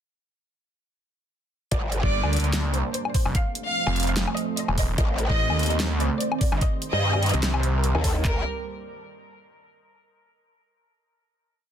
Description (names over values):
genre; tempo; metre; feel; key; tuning
heavy wobble dubstep; 147 BPM; 4/4; swing 54% on 16ths, half-time; G minor; A4 = 440 Hz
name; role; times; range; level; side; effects
rich chamber violin section; melody; 1.7-8.4 s; A4 to F5; -30 LUFS; equal; dub echo
lush unison pad; sustained chords; 2.0-8.4 s; Eb3 to D5; -32 LUFS; right 3 dB; chorus, phaser, sidechain pumping
growl bass; bass; 1.7-2.0, 5.0-8.4 s; G1 to G2; -24 LUFS; equal; chorus, overdrive
dubstep drum kit; drums; 1.7-8.3 s; handclaps, kick drum, toms; -24 LUFS; equal; none
dubstep drum kit; drums; 1.7-8.1 s; handclaps, hi-hat, snare drum, woodblock; -29 LUFS; left 2 dB; none
snarling distorted saw bass; bass; 2.0-7.9 s; Eb1 to Eb2; -24 LUFS; equal; distortion, overdrive
room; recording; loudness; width
little or no reverb; dense, heavily limited modern master; -22 LUFS; side -9 dB against mid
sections
1.7-8.2 drop; 8.2-9.9 final chord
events
drop 1.7-8.2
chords
1.7 Gm; 3.3 F; 5.0 Adim; 6.6 Cm; 8.2 Gm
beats
| 1.72 2.12 2.53 2.94 | 3.35 3.76 4.17 4.57 | 4.98 5.39 5.80 6.21 | 6.61 7.02 7.43 7.84 | 8.25